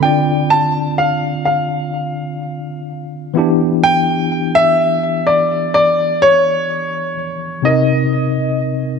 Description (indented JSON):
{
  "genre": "R&B",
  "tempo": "63 BPM",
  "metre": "4/4",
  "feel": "straight",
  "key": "unclear",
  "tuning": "A4 = 442 Hz",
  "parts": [
    { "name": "dark baby grand piano", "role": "melody", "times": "0.0-8.6 s", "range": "C#5 to A5", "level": "-15 LUFS", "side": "left 1 dB", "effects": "ping-pong delay" },
    { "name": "tine electric piano", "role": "accompaniment", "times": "0.0-9.0 s", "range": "C3 to Eb5", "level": "-18 LUFS", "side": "left 1 dB", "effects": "medium stereo tremolo" }
  ],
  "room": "moderate lush hall reverb, RT60 2.6 s",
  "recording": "none",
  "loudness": "-13 LUFS",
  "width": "side -6 dB against mid",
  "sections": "0.0-9.0 A section",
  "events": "none",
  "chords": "0.0 Dm7; 3.4 Em7; 7.6 Cm7"
}